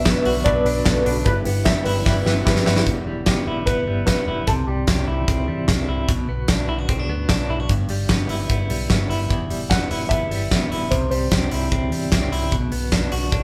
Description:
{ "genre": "jangly indie pop", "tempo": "149 BPM", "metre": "4/4", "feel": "straight", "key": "unclear", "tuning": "A4 = 439 Hz", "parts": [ { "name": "warm upright piano", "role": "melody", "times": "0.0-5.2, 9.7-11.9 s", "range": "G4 to F#5", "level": "-29 LUFS", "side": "equal", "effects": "none" }, { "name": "fingerpicked twelve-string acoustic guitar", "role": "accompaniment", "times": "0.0-2.9 s", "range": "B2 to B4", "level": "-29 LUFS", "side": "equal", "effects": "none" }, { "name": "reed electric piano", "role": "accompaniment", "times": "0.0-2.9 s", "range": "D4 to B4", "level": "-29 LUFS", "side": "equal", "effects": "fast tremolo" }, { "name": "direct-recorded clean electric guitar", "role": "arpeggios", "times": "0.0-13.4 s", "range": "E2 to F#4", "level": "-28 LUFS", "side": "equal", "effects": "tremolo" }, { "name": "vintage muted fingered electric bass", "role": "bass", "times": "0.0-13.4 s", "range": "E1 to E2", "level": "-28 LUFS", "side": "equal", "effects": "none" }, { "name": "big rock drum kit", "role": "drums", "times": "0.1-13.4 s", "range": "hi-hat, kick drum, snare drum", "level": "-24 LUFS", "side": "equal", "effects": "none" } ], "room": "moderate large studio reverb, RT60 0.9 s", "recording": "band playing live in one room", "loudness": "-21 LUFS", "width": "mono", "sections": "0.0-2.9 A section; 2.9-13.4 B section", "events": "drum fill 2.1-2.9", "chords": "0.0 Bm; 1.3 G6; 2.9 Em; 4.5 C; 6.1 Bm; 7.7 G6; 9.3 Em; 10.9 C; 12.5 Bm" }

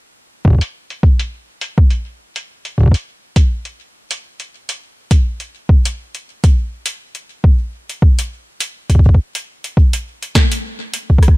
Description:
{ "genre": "IDM", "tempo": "103 BPM", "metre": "4/4", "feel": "swing 56% on 16ths", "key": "none", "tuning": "none", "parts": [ { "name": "electronic kick drum", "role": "drums", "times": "0.4-11.4 s", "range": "none", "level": "-10 LUFS", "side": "equal", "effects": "none" }, { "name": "electro analog drum machine", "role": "drums", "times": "0.6-11.4 s", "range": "hi-hat, rim click, snare drum", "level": "-21 LUFS", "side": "equal", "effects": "low-pass filter on hats, low-pass filter on snare" } ], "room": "little or no reverb", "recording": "none", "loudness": "-13 LUFS", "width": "side -22 dB against mid", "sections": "0.5-11.4 A section", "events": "none", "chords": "none" }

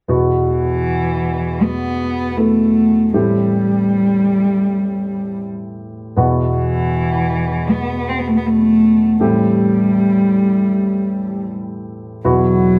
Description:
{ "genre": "pop", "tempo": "79 BPM", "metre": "4/4", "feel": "straight", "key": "E minor", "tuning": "A4 = 441 Hz", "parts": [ { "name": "warm grand piano", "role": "accompaniment", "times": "0.1-12.8 s", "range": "E2 to A4", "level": "-21 LUFS", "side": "equal", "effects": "none" }, { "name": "dark cello", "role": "melody", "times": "0.5-12.8 s", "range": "E3 to C4", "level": "-18 LUFS", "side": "equal", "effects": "none" } ], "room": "wet studio reverb, RT60 0.8 s", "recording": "band playing live in one room", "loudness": "-16 LUFS", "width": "mono", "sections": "0.1-12.2 A section", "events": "none", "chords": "0.1 Esus2; 3.1 Am7; 6.2 Esus2; 9.2 Am7; 12.2 Esus2" }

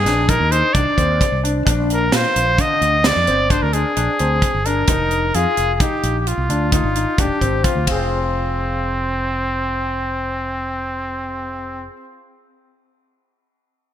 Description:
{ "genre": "progressive instrumental, band music in an uneven meter", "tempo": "131 BPM", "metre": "7/4", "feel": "straight", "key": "F dorian", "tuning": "A4 = 440 Hz", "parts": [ { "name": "clear trumpet", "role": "melody", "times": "0.0-11.9 s", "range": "C4 to Eb5", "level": "-20 LUFS", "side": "equal", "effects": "none" }, { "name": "mellow fretless electric bass", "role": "bass", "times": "0.0-11.9 s", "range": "F1 to Bb2", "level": "-22 LUFS", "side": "equal", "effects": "none" }, { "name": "clear concert grand piano", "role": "arpeggios", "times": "0.1-12.0 s", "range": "D3 to F5", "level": "-24 LUFS", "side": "left 4 dB", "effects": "lush chorus" }, { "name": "tight funk drum kit", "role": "drums", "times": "0.1-8.0 s", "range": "hi-hat, kick drum, ride cymbal, snare drum", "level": "-20 LUFS", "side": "right 1 dB", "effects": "gated reverb" } ], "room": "moderate lush hall reverb, RT60 2.1 s", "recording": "bright 1980s-style digital production", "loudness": "-16 LUFS", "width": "side -10 dB against mid", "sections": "0.0-8.1 A section; 8.1-11.3 B section", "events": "none", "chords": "0.0 Cmadd9; 1.7 Bbadd9; 4.9 Fm" }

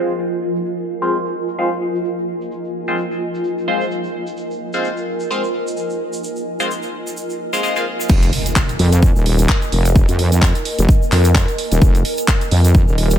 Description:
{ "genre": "bass house", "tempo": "129 BPM", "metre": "4/4", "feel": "swing 56% on 16ths", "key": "F minor", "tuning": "A4 = 440 Hz", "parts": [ { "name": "band-passed chord stab", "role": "stabs", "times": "0.0-7.8 s", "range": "Ab3 to F5", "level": "-23 LUFS", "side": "left 2 dB", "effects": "phaser, sidechain pumping, tape echo" }, { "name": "granular cloud pad", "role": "texture", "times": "0.0-13.2 s", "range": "F4 to Ab5", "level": "-23 LUFS", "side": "right 1 dB", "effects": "built-in reverb, sidechain pumping" }, { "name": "egg shaker", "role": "percussion", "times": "0.1-13.2 s", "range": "none", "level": "-32 LUFS", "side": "right 2 dB", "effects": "none" }, { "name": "wobble bass", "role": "bass", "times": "8.1-13.2 s", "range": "Eb1 to F2", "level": "-14 LUFS", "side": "equal", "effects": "chorus, sidechain pumping" }, { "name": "electronic kick drum", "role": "drums", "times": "8.1-12.9 s", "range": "none", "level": "-14 LUFS", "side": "equal", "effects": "none" }, { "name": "house drum kit", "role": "drums", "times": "8.1-13.2 s", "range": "crash cymbal, handclaps, hi-hat", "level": "-22 LUFS", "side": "equal", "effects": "none" }, { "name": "impact", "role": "sound effects", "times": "8.1-10.0 s", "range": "none", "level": "-25 LUFS", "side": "equal", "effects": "none" } ], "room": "light reverb, digital ambience", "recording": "low-pass filter", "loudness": "-15 LUFS", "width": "side -10 dB against mid", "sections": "0.0-8.1 A section; 8.1-13.2 B section", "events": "filter sweep 0.0-8.1; drop 8.1-13.2; impact 8.1-10.0", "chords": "0.0 Fm" }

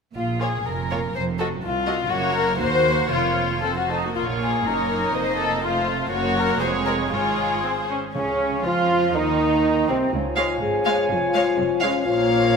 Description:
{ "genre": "quick classical-period movement for symphony orchestra", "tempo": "114-126 BPM", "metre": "2/4", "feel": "rubato", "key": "Bb minor, Db major from 6.1 s", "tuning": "A4 = 440 Hz", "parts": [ { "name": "dark chamber cello section", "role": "bass", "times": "0.1-12.6 s", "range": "C2 to F3", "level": "-30 LUFS", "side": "right 4 dB", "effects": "none" }, { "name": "warm chamber double bass section", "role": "bass", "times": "0.1-12.6 s", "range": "F1 to F2", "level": "-31 LUFS", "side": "right 5 dB", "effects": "none" }, { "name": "warm chamber violin section", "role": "second line", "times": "0.2-12.6 s", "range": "C4 to Db5", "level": "-24 LUFS", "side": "left 4 dB", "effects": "none" }, { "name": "warm chamber violin section", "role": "melody", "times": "0.4-12.6 s", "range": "C4 to F5", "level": "-29 LUFS", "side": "left 2 dB", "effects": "none" }, { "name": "warm studio viola section", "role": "accompaniment", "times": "0.4-12.6 s", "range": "Ab3 to Ab4", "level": "-27 LUFS", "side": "right 3 dB", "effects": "none" }, { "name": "mellow bassoon", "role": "accompaniment", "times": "8.1-12.6 s", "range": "C3 to F3", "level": "-27 LUFS", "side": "right 3 dB", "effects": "none" }, { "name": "small flute group", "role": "second line", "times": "8.2-12.6 s", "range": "C4 to Ab5", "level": "-27 LUFS", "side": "right 1 dB", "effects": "none" }, { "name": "warm clarinet", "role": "second line", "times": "8.2-12.6 s", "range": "C4 to Db5", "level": "-29 LUFS", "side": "equal", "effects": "none" }, { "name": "dark French horn section", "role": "sustained chords", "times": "8.2-12.6 s", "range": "C4 to Ab4", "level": "-24 LUFS", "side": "left 5 dB", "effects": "none" }, { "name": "timpani", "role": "percussion", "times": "8.2-8.9 s", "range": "Db3", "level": "-38 LUFS", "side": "left 1 dB", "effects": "none" } ], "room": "wet concert hall reverb, RT60 2.4 s", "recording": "none", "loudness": "-19 LUFS", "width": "side -5 dB against mid", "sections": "0.1-8.2 A section; 8.2-12.6 B section", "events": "none", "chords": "0.1 Bb5; 1.1 F(b9); 2.1 Gb; 2.6 Cm7b5/Eb; 3.1 Bbm/F; 3.6 F5; 4.1 Bbm; 5.1 F7; 6.1 Gb; 6.6 Db/F; 7.1 Db/Ab; 7.6 Ab; 8.2 Db; 9.2 Cm; 10.1 Db; 11.1 Db/F; 12.1 Bbm" }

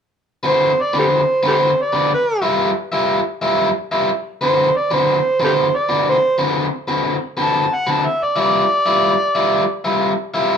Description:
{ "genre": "blues", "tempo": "121 BPM", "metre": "4/4", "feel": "swing 65% on 8ths", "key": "D mixolydian", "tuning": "A4 = 438 Hz", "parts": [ { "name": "crunchy overdriven guitar", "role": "riff", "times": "0.4-10.6 s", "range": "D3 to E5", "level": "-18 LUFS", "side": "left 1 dB", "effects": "none" }, { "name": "overdriven harmonica", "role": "melody", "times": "0.5-9.8 s", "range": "G4 to A5", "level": "-17 LUFS", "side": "right 1 dB", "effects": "none" } ], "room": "moderate studio reverb, RT60 0.8 s", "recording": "none", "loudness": "-15 LUFS", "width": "side -7 dB against mid", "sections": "0.1-10.6 A section", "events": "none", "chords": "0.1 D6; 2.1 G6; 4.1 D6; 8.0 G6" }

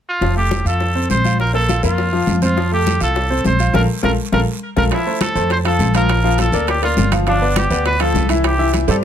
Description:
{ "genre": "latin, salsa", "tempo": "204 BPM", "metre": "4/4", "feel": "straight", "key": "F major", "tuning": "A4 = 441 Hz", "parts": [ { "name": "clear trumpet", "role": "melody", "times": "0.1-9.0 s", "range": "D4 to C5", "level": "-20 LUFS", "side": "right 1 dB", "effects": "tape echo" }, { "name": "bright grand piano", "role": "accompaniment", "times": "0.2-9.0 s", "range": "E3 to F5", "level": "-20 LUFS", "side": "left 2 dB", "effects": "none" }, { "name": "upright bass", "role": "bass", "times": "0.2-9.0 s", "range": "F1 to G2", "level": "-18 LUFS", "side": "right 1 dB", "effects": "none" }, { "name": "bongos", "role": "percussion", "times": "0.2-9.0 s", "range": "none", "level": "-26 LUFS", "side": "left 5 dB", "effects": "none" }, { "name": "congas", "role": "percussion", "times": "0.2-9.0 s", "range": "none", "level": "-24 LUFS", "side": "left 4 dB", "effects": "none" }, { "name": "guiro", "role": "percussion", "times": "0.2-9.0 s", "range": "none", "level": "-32 LUFS", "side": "right 8 dB", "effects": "none" }, { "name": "timbales", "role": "percussion", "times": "4.9-8.9 s", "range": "none", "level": "-24 LUFS", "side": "right 9 dB", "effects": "none" } ], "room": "light reverb", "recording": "close, detailed microphones", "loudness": "-14 LUFS", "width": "side -9 dB against mid", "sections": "0.2-4.9 A section; 4.9-9.0 B section", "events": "band accent 3.7-4.9; drum fill 4.2-4.9, 8.9", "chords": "0.2 Fadd9; 1.4 Bb5; 2.6 Fadd9; 3.7 Bb5; 4.9 Fmaj7; 6.1 Bb; 7.3 G7; 8.4 C" }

